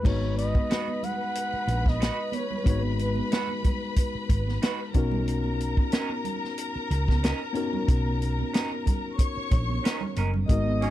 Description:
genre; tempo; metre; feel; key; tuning
lush 1970s-style soul; 92 BPM; 4/4; swing 54% on 16ths; G# minor; A4 = 439 Hz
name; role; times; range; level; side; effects
breathy flugelhorn; melody; 0.0-3.6, 10.5-10.9 s; B4 to F#5; -32 LUFS; right 2 dB; none
warm studio string section; second line; 0.0-10.9 s; A#4 to D#6; -35 LUFS; left 2 dB; none
tine electric piano; accompaniment; 0.0-10.9 s; G#3 to B4; -32 LUFS; left 5 dB; none
vintage drum kit; drums; 0.0-10.9 s; crash cymbal, hi-hat, kick drum, snare drum; -24 LUFS; equal; none
congas; percussion; 0.0-10.8 s; none; -37 LUFS; right 8 dB; none
hollow-body short-scale fingered electric bass; bass; 0.1-10.9 s; F#1 to C#2; -27 LUFS; equal; none
electric guitar through a small old amp; riff; 0.7-10.3 s; C#4 to B4; -33 LUFS; right 6 dB; none
mellow horn section; stabs; 10.8-10.9 s; F#3 to C#4; -28 LUFS; right 4 dB; none
room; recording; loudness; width
studio ambience; dry, close 1970s-style studio recording; -24 LUFS; side -14 dB against mid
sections
0.0-10.9 A section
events
none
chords
0.0 G#m7; 4.9 Bmaj9

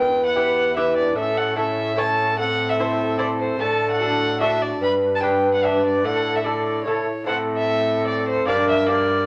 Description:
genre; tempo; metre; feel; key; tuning
classical, renaissance-style consort dance; 147 BPM; 3/4; straight; unclear; A4 = 439 Hz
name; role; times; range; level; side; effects
dark violin; melody; 0.0-9.3 s; C5 to B5; -26 LUFS; equal; none
mellow tenor recorder; second line; 0.0-9.3 s; A4 to B4; -24 LUFS; equal; none
clear trombone; accompaniment; 0.0-9.3 s; C4 to E4; -34 LUFS; equal; none
lute; accompaniment; 0.0-9.3 s; E2 to C#5; -29 LUFS; equal; none
rich cello; bass; 0.0-9.3 s; E2 to A2; -34 LUFS; equal; none
room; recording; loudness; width
wet stone room reverb, RT60 0.9 s; none; -21 LUFS; mono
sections
0.0-7.3 A section; 7.3-9.3 A section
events
none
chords
0.0 Em; 1.2 A; 2.4 Am; 3.6 D/A; 4.8 G; 6.0 Asus4; 6.9 A; 7.3 Am; 8.5 Gm

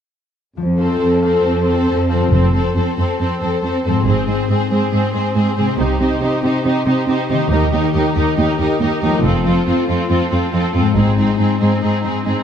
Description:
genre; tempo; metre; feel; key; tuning
cinematic, heroic adventure film score; 139 BPM; 4/4; straight; unclear; A4 = 440 Hz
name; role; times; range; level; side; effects
dark French horn section; sustained chords; 0.6-2.1 s; C4 to A4; -19 LUFS; equal; none
concert harp; arpeggios; 0.6-12.4 s; Ab2 to F5; -22 LUFS; left 8 dB; none
warm symphonic cello section; bass; 0.6-12.3 s; Eb2 to C3; -18 LUFS; right 2 dB; none
warm symphonic violin section; melody; 0.8-12.4 s; Ab4 to C5; -27 LUFS; left 4 dB; none
warm symphonic violin section; second line; 0.8-12.4 s; Eb4 to A4; -24 LUFS; left 2 dB; none
rich symphonic viola section; accompaniment; 0.8-12.4 s; C4 to Eb4; -21 LUFS; right 2 dB; none
warm symphonic double bass section; bass; 2.3-11.2 s; F1 to Eb2; -20 LUFS; right 3 dB; none
timpani; percussion; 2.3-2.9 s; F2; -21 LUFS; equal; none
room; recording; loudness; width
moderate scoring stage reverb, RT60 1.4 s; dark, warm production; -14 LUFS; side -8 dB against mid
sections
0.6-2.3 A section; 2.3-12.4 B section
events
build-up 2.3-12.4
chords
0.6 F; 4.1 Ab; 5.8 Cm; 7.5 Eb; 9.2 F; 11.0 Ab

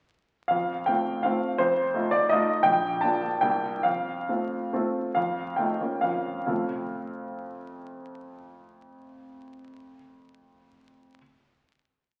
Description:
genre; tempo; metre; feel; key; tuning
classical, romantic triple-time dance for piano with dotted rhythms; 121-185 BPM; 3/4; rubato; F major; A4 = 443 Hz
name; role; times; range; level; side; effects
warm baby grand piano; solo; 0.5-11.2 s; Bb1 to A5; -27 LUFS; equal; none
room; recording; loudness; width
wet recital hall reverb, RT60 1.4 s; very old 78 rpm record, vinyl crackle; -27 LUFS; mono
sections
0.5-5.1 A section; 5.1-6.5 coda; 6.5-9.1 final chord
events
slowing down 3.2-6.5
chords
0.5 F; 1.6 F7; 2.7 Bb; 3.4 C9; 3.8 F; 5.1 F7; 5.8 Bbm; 6.5 F

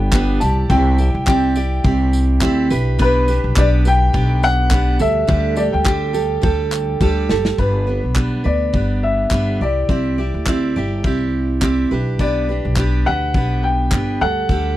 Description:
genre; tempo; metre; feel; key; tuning
acoustic pop; 104 BPM; 4/4; swing 55% on 16ths; G major; A4 = 441 Hz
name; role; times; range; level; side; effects
warm upright piano; melody; 0.0-14.8 s; B4 to A5; -21 LUFS; left 3 dB; none
picked steel-string acoustic guitar; accompaniment; 0.0-14.8 s; D3 to D5; -20 LUFS; right 3 dB; none
upright bass; bass; 0.0-14.8 s; F#1 to D2; -18 LUFS; equal; none
loose indie drum kit; drums; 0.1-14.6 s; handclaps, kick drum, snare drum, tambourine; -19 LUFS; equal; none
room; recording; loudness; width
little or no reverb; dry, close 1970s-style studio recording; -15 LUFS; side -14 dB against mid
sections
0.0-7.6 A section; 7.6-14.8 B section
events
drum fill 7.0-7.6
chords
0.4 Cadd9; 2.7 G/B; 5.0 Dsus4; 7.6 G; 9.6 Cadd9; 11.9 G/B; 14.2 Dsus4

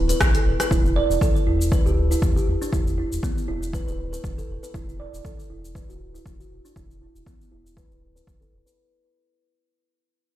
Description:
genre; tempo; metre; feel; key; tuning
afro house; 119 BPM; 4/4; swing 55% on 16ths; unclear; A4 = 440 Hz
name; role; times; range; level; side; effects
smooth synth bass; bass; 0.0-8.6 s; D1 to B1; -25 LUFS; equal; sidechain pumping
kalimba; arpeggios; 0.1-8.7 s; B3 to D5; -27 LUFS; right 2 dB; sidechain pumping, low-pass filter, digital delay
afro-pop drum kit; drums; 0.1-8.8 s; hi-hat, rim click, shaker; -29 LUFS; left 1 dB; none
electronic kick drum; drums; 0.2-8.4 s; none; -24 LUFS; equal; overdrive
room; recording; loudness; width
light reverb, digital ambience; played on a big sound system in a bare room, stone room reverb; -20 LUFS; side -13 dB against mid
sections
0.0-8.8 A section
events
fade-out 0.0-8.8; filter sweep on kalimba 0.0-8.8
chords
0.0 Dsus2; 0.7 G (rootless); 4.7 N.C.

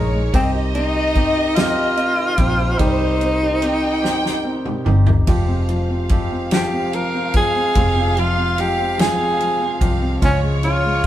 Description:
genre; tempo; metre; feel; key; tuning
six-eight pop ballad; 49 BPM (dotted quarters); 6/8; straight; unclear; A4 = 440 Hz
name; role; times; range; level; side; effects
warm studio violin section; second line; 0.0-11.1 s; C5 to G5; -25 LUFS; equal; none
clear upright piano; accompaniment; 0.0-11.1 s; C3 to G4; -25 LUFS; left 1 dB; none
direct-recorded clean electric guitar; arpeggios; 0.0-11.1 s; F2 to Bb4; -29 LUFS; right 4 dB; none
vintage muted fingered electric bass; bass; 0.0-11.1 s; F1 to Db2; -21 LUFS; equal; none
natural country drum kit; drums; 0.3-11.1 s; kick drum, ride cymbal, snare drum, toms; -20 LUFS; equal; none
breathy tenor saxophone; melody; 0.4-11.1 s; C4 to Bb4; -20 LUFS; equal; none
room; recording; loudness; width
moderate studio reverb, RT60 0.6 s; band playing live in one room; -16 LUFS; side -12 dB against mid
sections
0.0-11.1 A section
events
drum fill 4.0-5.3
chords
0.3 Cm; 5.3 Fmadd9; 10.2 Db

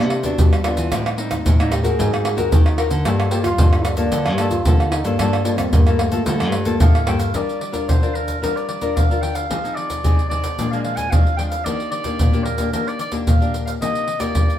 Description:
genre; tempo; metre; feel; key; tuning
samba and choro; 112 BPM; 4/4; straight; G minor; A4 = 440 Hz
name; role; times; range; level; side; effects
warm trombone; second line; 0.0-6.8 s; A3 to Ab4; -25 LUFS; right 2 dB; none
nylon-string guitar; accompaniment; 0.0-14.6 s; F2 to Bb4; -23 LUFS; left 3 dB; none
nylon-string guitar; bass; 0.0-7.3 s; G2 to G3; -22 LUFS; left 1 dB; none
pandeiro, tamborim, tube shaker and surdo; percussion; 0.1-14.6 s; none; -18 LUFS; equal; none
warm clarinet; melody; 6.8-14.6 s; Bb4 to Ab5; -25 LUFS; right 1 dB; none
room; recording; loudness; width
wet studio reverb, RT60 0.7 s; band playing live in one room; -16 LUFS; side -11 dB against mid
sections
0.0-7.3 A section; 7.3-14.6 B section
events
trombone solo 0.0-7.3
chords
0.0 Cmaj9; 0.9 Am7b5; 2.0 Ab9; 3.1 Gm9; 7.3 Gm7; 9.5 Fm7; 10.6 Bb7; 11.7 Ebmaj7; 13.8 Cm7

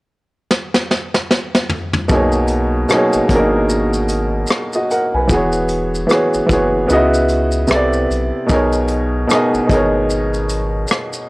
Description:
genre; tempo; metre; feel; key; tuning
lo-fi hip hop; 75 BPM; 4/4; swing 60% on 16ths; B major; A4 = 440 Hz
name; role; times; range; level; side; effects
vintage brush drum kit; drums; 0.5-11.3 s; hi-hat, kick drum, rim click, shaker, snare drum, toms; -18 LUFS; equal; vintage 12-bit sampler grit
warm upright piano; accompaniment; 2.1-11.3 s; B2 to G#5; -15 LUFS; equal; low-pass filter
soft dub sub bass; bass; 2.1-10.9 s; E1 to C#2; -21 LUFS; equal; tube saturation
room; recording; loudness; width
studio reverb; dry, gritty hardware recording; -14 LUFS; side -22 dB against mid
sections
0.0-2.1 A section; 2.1-11.3 B section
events
drum fill 0.5-2.1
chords
0.0 N.C.; 2.1 Bmaj13; 5.3 E69; 6.9 C#m11; 7.7 Cmaj13; 8.5 Bmaj13

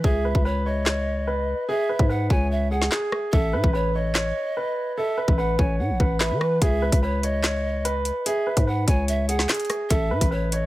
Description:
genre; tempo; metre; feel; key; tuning
hip hop, drill; 146 BPM; 4/4; half-time; C# minor; A4 = 440 Hz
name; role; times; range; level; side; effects
warm concert grand piano; melody; 0.0-10.7 s; G#4 to C#5; -26 LUFS; equal; none
mellow hollow pan flute; second line; 0.0-10.7 s; B4 to G#5; -30 LUFS; right 2 dB; tape echo
growling 808-style bass; bass; 0.0-10.7 s; A1 to E3; -24 LUFS; equal; none
drill drum kit; drums; 0.0-10.6 s; handclaps, hi-hat, kick drum, rim click, snare drum; -22 LUFS; equal; none
room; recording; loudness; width
small room ambience; none; -20 LUFS; side -17 dB against mid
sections
0.0-10.7 A section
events
break 0.0-6.6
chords
0.0 C#m; 3.3 Asus2; 6.6 C#m; 9.9 Asus2

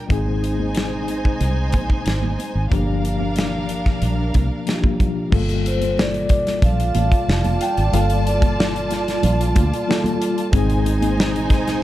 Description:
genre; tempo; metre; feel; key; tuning
lush 1970s-style soul; 92 BPM; 4/4; straight; G phrygian; A4 = 440 Hz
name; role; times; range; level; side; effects
warm studio string section; second line; 0.0-11.8 s; D4 to A5; -26 LUFS; right 2 dB; none
mellow tine electric piano; accompaniment; 0.0-11.8 s; F3 to A4; -25 LUFS; left 4 dB; medium stereo tremolo
fingered electric bass; bass; 0.1-11.8 s; F1 to D2; -22 LUFS; equal; none
modern studio drum kit; drums; 0.1-11.8 s; crash cymbal, hi-hat, kick drum, snare drum; -21 LUFS; equal; none
congas; percussion; 0.3-11.3 s; none; -29 LUFS; right 5 dB; none
vibraphone with soft mallets; melody; 5.7-10.2 s; C5 to G5; -25 LUFS; equal; analog delay
room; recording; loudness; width
light reverb; dark, warm production; -17 LUFS; side -14 dB against mid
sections
0.0-5.3 A section; 5.3-11.8 B section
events
none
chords
0.1 Ab; 2.7 Gm7; 5.3 Gm9; 10.5 Ab

